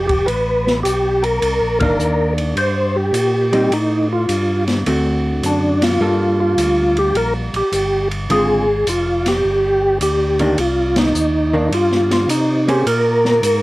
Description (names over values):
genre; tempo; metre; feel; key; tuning
soul jazz organ trio; 105 BPM; 4/4; swing 68% on 8ths; G minor, C minor from 10.6 s; A4 = 440 Hz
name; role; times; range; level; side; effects
percussive tonewheel organ; melody; 0.0-13.6 s; D4 to C5; -16 LUFS; equal; slow rotary speaker, chorus vibrato, cassette tape
tonewheel organ; bass; 0.0-13.6 s; F1 to C3; -21 LUFS; equal; chorus vibrato, slow rotary speaker, transformer saturation
open jazz drum kit; drums; 0.1-13.6 s; hi-hat, kick drum, ride cymbal, snare drum; -24 LUFS; equal; none
hollow-body jazz guitar; accompaniment; 1.8-12.8 s; D3 to C5; -20 LUFS; equal; cassette tape
room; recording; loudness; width
moderate booth ambience, RT60 0.2 s; home recording on cassette; -14 LUFS; side -18 dB against mid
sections
0.0-10.6 A section; 10.6-13.6 B section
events
band accent 1.7, 5.7, 10.9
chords
0.0 G7; 1.4 Cm9; 3.7 F9; 4.9 D7; 6.0 Gm9; 8.3 Dm7b5; 9.4 G5; 10.6 Cm7; 12.9 Bb7(no3)